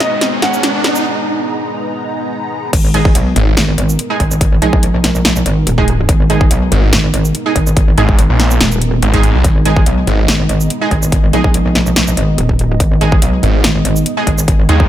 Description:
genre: heavy wobble dubstep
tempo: 143 BPM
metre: 4/4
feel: half-time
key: G# minor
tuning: A4 = 440 Hz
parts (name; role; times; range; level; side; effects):
- felt-muted upright piano; melody; 0.0-1.1 s; D#5 to F#5; -19 LUFS; equal; ping-pong delay
- lush unison pad; sustained chords; 0.0-14.9 s; G#3 to A#5; -22 LUFS; equal; chorus, phaser, sidechain pumping
- big-room dance drum kit; drums; 0.0-14.8 s; crash cymbal, hi-hat, shaker, snare drum; -17 LUFS; equal; none
- riser; sound effects; 0.0-1.1 s; none; -19 LUFS; right 1 dB; none
- clear studio string section; texture; 0.0-1.1 s; G#3 to D#5; -28 LUFS; left 2 dB; none
- metallic wobble bass; bass; 2.7-14.7 s; D#1 to B1; -14 LUFS; equal; distortion, chorus, overdrive
- electronic kick drum; drums; 2.7-14.9 s; none; -13 LUFS; equal; none
- orchestra-hit-like synth stab; stabs; 2.9-14.9 s; G#3 to G#4; -19 LUFS; right 3 dB; built-in reverb, ping-pong delay
- snarling distorted saw bass; bass; 3.4-3.6, 6.7-10.3, 13.4-14.9 s; G#1 to D#2; -12 LUFS; equal; distortion, overdrive
room: little or no reverb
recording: none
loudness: -10 LUFS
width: side -12 dB against mid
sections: 0.0-2.7 A section; 2.7-14.9 B section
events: build-up 0.0-2.7; drum fill 0.0-1.1; riser 0.0-1.1; filter sweep on analog synth pad 0.0-2.7; break 1.1-2.7; drop 2.7-14.9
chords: 0.0 G#madd9

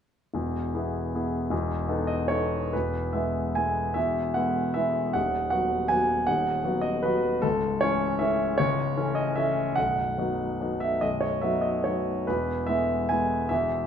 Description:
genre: classical, piano waltz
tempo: 132-170 BPM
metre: 3/4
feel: rubato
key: E major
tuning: A4 = 440 Hz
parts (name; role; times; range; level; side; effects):
- warm concert grand piano; solo; 0.3-13.9 s; B0 to G#5; -24 LUFS; equal; none
room: moderate recital hall reverb, RT60 1.5 s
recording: none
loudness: -24 LUFS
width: side -8 dB against mid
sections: 0.3-2.7 A section; 2.7-13.9 B section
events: none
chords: 0.3 E; 1.5 B7/E; 2.7 E; 5.2 B/D#; 7.4 A/C#; 9.8 B; 12.3 E

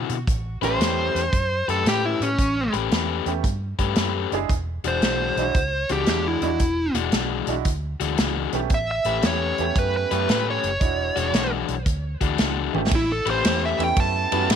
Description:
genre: electric blues shuffle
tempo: 114 BPM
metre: 4/4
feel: swing 66% on 8ths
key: A mixolydian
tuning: A4 = 440 Hz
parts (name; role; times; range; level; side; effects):
- overdriven semi-hollow guitar; riff; 0.0-14.6 s; D3 to B4; -26 LUFS; left 14 dB; none
- vintage muted fingered electric bass; bass; 0.0-14.6 s; E1 to B2; -28 LUFS; right 1 dB; none
- natural country drum kit; drums; 0.1-14.6 s; hi-hat, kick drum, ride cymbal, snare drum, toms; -24 LUFS; equal; none
- dark smooth lead guitar; melody; 0.6-14.5 s; C#4 to A5; -24 LUFS; right 1 dB; overdrive
- bright upright piano; accompaniment; 0.6-14.5 s; G3 to G#4; -28 LUFS; right 16 dB; none
room: little or no reverb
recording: 1960s-style stereo with parts hard left and right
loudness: -20 LUFS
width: side -8 dB against mid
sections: 0.0-12.9 A section; 12.9-14.6 B section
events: drum fill 12.7; lead electric guitar solo 12.9-14.6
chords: 0.3 A9; 4.5 E9; 8.7 A9; 10.8 E9; 12.9 A9

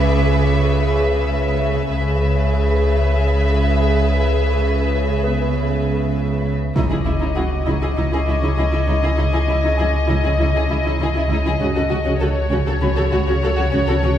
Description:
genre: cinematic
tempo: 99 BPM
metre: 4/4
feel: straight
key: C# minor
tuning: A4 = 443 Hz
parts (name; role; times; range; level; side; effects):
- warm studio violin section; melody; 0.0-14.2 s; C#5 to E5; -24 LUFS; left 2 dB; none
- clear studio violin section; second line; 0.0-14.1 s; C#4 to B4; -27 LUFS; left 2 dB; none
- warm studio viola section; accompaniment; 0.0-14.1 s; E4 to G#4; -25 LUFS; equal; none
- dark studio double bass section; bass; 0.0-14.1 s; C#2; -23 LUFS; right 2 dB; none
- warm studio cello section; bass; 0.0-14.1 s; C#3; -24 LUFS; right 2 dB; none
- sub bass with octave; drone; 0.0-14.2 s; C#2; -21 LUFS; left 1 dB; none
- bright grand piano; texture; 0.0-14.2 s; B3 to B5; -32 LUFS; equal; none
- warm studio violin section; texture; 0.0-1.6, 6.8-11.3 s; C#6 to G#6; -34 LUFS; left 3 dB; none
- impact; sound effects; 6.8-9.2 s; none; -26 LUFS; equal; none
room: wet scoring stage reverb, RT60 1.8 s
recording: heard from further back in the room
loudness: -16 LUFS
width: side -10 dB against mid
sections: 0.0-6.8 A section; 6.8-14.2 B section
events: impact 6.8-9.2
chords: 0.0 C#m7; 6.8 C#madd9; 11.6 F#5/C#

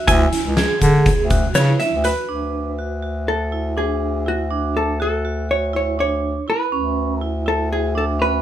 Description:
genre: progressive instrumental, band music in an uneven meter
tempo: 244 BPM (eighths)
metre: 9/8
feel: straight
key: D lydian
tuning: A4 = 440 Hz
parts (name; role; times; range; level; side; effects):
- hollow-body jazz guitar; melody; 0.0-8.4 s; F#4 to G#5; -22 LUFS; equal; none
- vibraphone with medium hard mallets; arpeggios; 0.0-8.4 s; C#4 to G#4; -25 LUFS; right 6 dB; none
- clear bass clarinet; bass; 0.1-8.4 s; C#2 to D3; -21 LUFS; equal; none
- oversized low-tuned drum kit; drums; 0.1-2.2 s; hi-hat, kick drum, snare drum; -20 LUFS; left 1 dB; none
- tube shaker; percussion; 0.1-1.8 s; none; -33 LUFS; left 6 dB; none
room: light reverb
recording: none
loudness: -17 LUFS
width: side -11 dB against mid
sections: 0.0-2.3 A section; 2.3-8.4 B section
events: hollow-body jazz guitar solo 0.0-2.3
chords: 0.0 E6; 2.3 Dmaj7; 6.7 E5/D

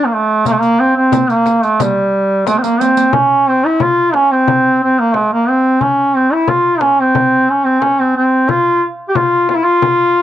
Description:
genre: Turkish makam ensemble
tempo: 90 BPM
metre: 4/4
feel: straight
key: C makam hicaz from 3.1 s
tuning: A4 = 439 Hz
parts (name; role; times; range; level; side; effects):
- warm duduk; melody; 0.0-10.2 s; G3 to G4; -11 LUFS; equal; none
- frame drum; percussion; 0.5-10.0 s; none; -21 LUFS; left 7 dB; none
- riq; percussion; 0.5-3.1 s; none; -21 LUFS; right 10 dB; none
room: moderate spring reverb, RT60 1.3 s, small room ambience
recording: home recording on cassette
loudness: -10 LUFS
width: side -12 dB against mid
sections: 0.0-3.1 A section; 3.1-10.2 B section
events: drum fill 2.5-3.1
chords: none

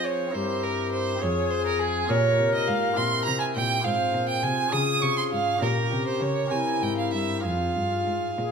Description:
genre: classical, baroque-style sonata movement with continuo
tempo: 68 BPM (dotted quarters)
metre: 6/8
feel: rubato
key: F minor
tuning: A4 = 440 Hz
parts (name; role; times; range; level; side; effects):
- mellow silver concert flute; melody; 0.0-8.5 s; E4 to C5; -30 LUFS; left 9 dB; none
- clear violin; second line; 0.0-8.5 s; Ab4 to Eb6; -26 LUFS; right 5 dB; none
- chamber organ, sparkling flutes; accompaniment; 0.0-8.5 s; F2 to Bb4; -30 LUFS; left 2 dB; none
- rich cello; bass; 0.0-8.5 s; F2 to F3; -31 LUFS; equal; none
room: wet recital hall reverb, RT60 1.5 s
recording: minimal, uncompressed stereo recording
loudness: -22 LUFS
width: side -6 dB against mid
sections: 0.0-8.5 A section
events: none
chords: 0.3 C7/G; 1.2 Fm; 2.1 Gm7b5/Bb; 3.0 C7/Bb; 3.8 Fm/Ab; 4.7 Db; 5.6 Gdim/Bb; 6.5 C7; 7.4 Fm

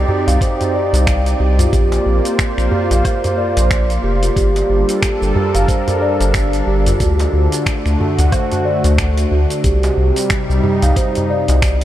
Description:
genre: organic downtempo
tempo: 91 BPM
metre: 4/4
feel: swing 58% on 16ths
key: G minor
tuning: A4 = 439 Hz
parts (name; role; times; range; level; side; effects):
- warm analog pad; sustained chords; 0.0-11.8 s; C3 to D5; -20 LUFS; equal; chorus, sidechain pumping
- steel tongue drum; arpeggios; 0.0-11.6 s; F4 to F#5; -19 LUFS; right 2 dB; analog delay
- round analog bass; bass; 0.0-11.8 s; F1 to D2; -15 LUFS; equal; sidechain pumping
- darbuka; percussion; 0.1-11.6 s; none; -23 LUFS; equal; none
- dusty soul sampler-style drum kit; drums; 0.3-11.8 s; finger snaps, hi-hat, shaker, woodblock; -25 LUFS; equal; none
- electronic kick drum; drums; 0.4-11.8 s; none; -18 LUFS; equal; none
room: light reverb, digital ambience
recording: none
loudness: -13 LUFS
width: side -12 dB against mid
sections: 0.0-11.8 A section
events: none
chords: 0.0 Cm; 1.7 Bb; 4.4 Gm9; 7.0 D7; 9.6 Cm

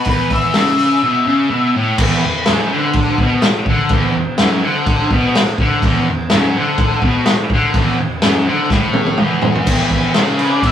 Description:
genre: garage rock duo or trio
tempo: 125 BPM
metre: 4/4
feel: straight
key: unclear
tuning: A4 = 440 Hz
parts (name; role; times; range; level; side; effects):
- octave-fuzz lead guitar; melody; 0.0-1.7, 10.4-10.7 s; B4 to E5; -18 LUFS; left 4 dB; distortion, tape echo
- thick fuzz guitar; riff; 0.0-10.7 s; E2 to D3; -16 LUFS; equal; distortion
- vintage drum kit; drums; 0.0-10.7 s; crash cymbal, hi-hat, kick drum, snare drum, toms; -15 LUFS; equal; none
room: moderate small room reverb, RT60 0.5 s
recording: rough rehearsal-room recording, small room ambience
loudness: -12 LUFS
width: side -9 dB against mid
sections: 0.0-2.0 A section; 2.0-9.7 B section; 9.7-10.7 C section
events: drum fill 8.7-9.7; lead electric guitar solo 9.7-10.7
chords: 0.0 E5

